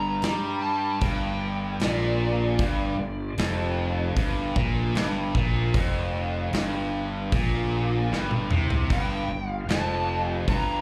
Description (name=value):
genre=blues rock power trio and southern rock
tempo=76 BPM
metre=4/4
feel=straight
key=G minor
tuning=A4 = 440 Hz
part: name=overdriven slide guitar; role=melody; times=0.0-3.4, 8.9-10.8 s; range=D5 to Bb5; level=-33 LUFS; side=equal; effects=none
part: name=distorted electric guitar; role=riff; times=0.0-10.8 s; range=F2 to G3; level=-30 LUFS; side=equal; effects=overdrive, slapback echo
part: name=fuzz fingered electric bass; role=bass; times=0.0-10.8 s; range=F1 to G2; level=-31 LUFS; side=equal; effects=overdrive
part: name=big rock drum kit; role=drums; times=0.2-10.7 s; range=hi-hat, kick drum, snare drum, toms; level=-29 LUFS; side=equal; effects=none
room=light reverb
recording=live gig heard through the venue's PA, club reverb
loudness=-26 LUFS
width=mono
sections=0.0-10.8 A section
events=drum fill 8.1-8.9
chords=0.0 Gm